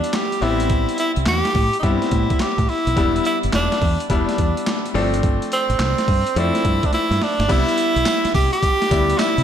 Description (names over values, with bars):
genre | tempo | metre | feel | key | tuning
R&B, new jack swing | 106 BPM | 4/4 | swing 66% on 16ths | C major | A4 = 439 Hz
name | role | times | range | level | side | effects
bright tenor saxophone | melody | 0.0-9.4 s | C4 to G4 | -20 LUFS | right 1 dB | slapback echo
bright grand piano | accompaniment | 0.0-9.4 s | F3 to E4 | -24 LUFS | left 3 dB | slapback echo
boom bap sampler-style drum kit | drums | 0.0-9.4 s | crash cymbal, handclaps, hi-hat, kick drum, snare drum, tambourine | -22 LUFS | equal | overdrive
deep dub fingered electric bass | bass | 0.4-9.4 s | E1 to C3 | -22 LUFS | equal | none
room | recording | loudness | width
moderate recital hall reverb, RT60 1.4 s, digital ambience | big arena sound | -16 LUFS | side -9 dB against mid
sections
0.0-7.5 A section; 7.5-9.4 B section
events
drum fill 6.9-7.5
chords
0.4 Am7; 3.0 Em7; 4.9 G7sus4; 7.5 Cmaj9